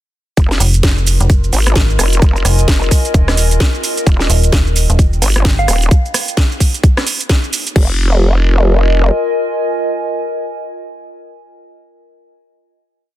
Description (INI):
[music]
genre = bass house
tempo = 130 BPM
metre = 4/4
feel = swing 60% on 16ths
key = F minor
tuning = A4 = 441 Hz
[part]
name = vowel-sweep wobble bass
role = bass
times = 0.4-9.1 s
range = Eb1 to Ab1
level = -12 LUFS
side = equal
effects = chorus, overdrive, sidechain pumping
[part]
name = electronic kick drum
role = drums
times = 0.4-7.9 s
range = none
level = -11 LUFS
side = equal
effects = none
[part]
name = house drum kit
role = drums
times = 0.4-7.9 s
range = crash cymbal, hi-hat, rim click, shaker, snare drum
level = -18 LUFS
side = right 1 dB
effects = none
[part]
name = warbly tape-like pad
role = texture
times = 1.0-11.9 s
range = F4 to Ab5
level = -20 LUFS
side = left 1 dB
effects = chorus, built-in reverb, sidechain pumping
[part]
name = metallic FM bass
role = bass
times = 0.6-5.7 s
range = Eb1 to Ab1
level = -13 LUFS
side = equal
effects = tube saturation, sidechain pumping
[part]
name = soft synth bell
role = melody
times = 5.6-5.7 s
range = F5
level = -22 LUFS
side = right 2 dB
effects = chorus, phaser, ping-pong delay
[sound]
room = digital ambience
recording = dense, heavily limited modern master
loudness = -11 LUFS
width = side -14 dB against mid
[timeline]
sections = 0.4-7.8 drop; 7.8-11.4 final chord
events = drop 0.4-7.8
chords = 0.4 Fm; 4.1 Ebadd9; 7.8 Fm